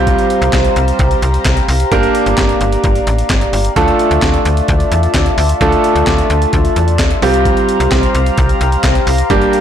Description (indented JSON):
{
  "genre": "synth-pop",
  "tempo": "130 BPM",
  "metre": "4/4",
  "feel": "straight",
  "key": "unclear",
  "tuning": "A4 = 440 Hz",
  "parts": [
    { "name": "clear concert grand piano", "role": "accompaniment", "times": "0.0-9.6 s", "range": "G3 to Bb4", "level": "-15 LUFS", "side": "right 3 dB", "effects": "none" },
    { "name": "chorused pulse-width pad", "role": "sustained chords", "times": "0.0-9.6 s", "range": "F4 to Bb5", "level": "-18 LUFS", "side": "left 3 dB", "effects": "none" },
    { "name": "slap-like FM bass", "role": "bass", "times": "0.0-9.5 s", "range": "G1 to E2", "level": "-15 LUFS", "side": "equal", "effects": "tube saturation" },
    { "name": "breakbeat sampler-style drum kit", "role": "drums", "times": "0.1-9.6 s", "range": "handclaps, hi-hat, kick drum, snare drum", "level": "-17 LUFS", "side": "equal", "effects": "none" }
  ],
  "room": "light reverb",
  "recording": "blown-out, overdriven recording, overdrive",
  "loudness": "-10 LUFS",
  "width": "side -9 dB against mid",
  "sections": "0.0-9.6 A section",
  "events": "none",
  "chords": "0.0 C7sus4; 1.9 Gm7; 3.8 Dmadd9; 7.2 C7sus4"
}